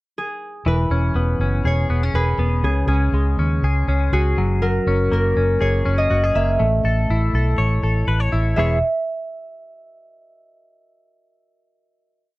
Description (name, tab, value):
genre	jangly indie pop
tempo	121 BPM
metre	4/4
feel	straight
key	E major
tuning	A4 = 438 Hz
part	concert harp	melody	0.2-8.8 s	F#4 to E5	-24 LUFS	right 1 dB	none
part	direct-recorded clean electric guitar	arpeggios	0.7-8.8 s	C#3 to C#5	-23 LUFS	left 2 dB	analog chorus, slapback echo
part	vintage muted fingered electric bass	bass	0.7-8.8 s	E1 to D#2	-19 LUFS	equal	none
room	little or no reverb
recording	dry, close 1970s-style studio recording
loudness	-17 LUFS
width	side -19 dB against mid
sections	0.0-0.7 pickup bar; 0.7-8.6 verse; 8.6-10.5 final chord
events	none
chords	0.0 N.C.; 0.7 E6; 2.6 C#5; 4.4 F#add9; 6.6 Aadd9; 8.6 E6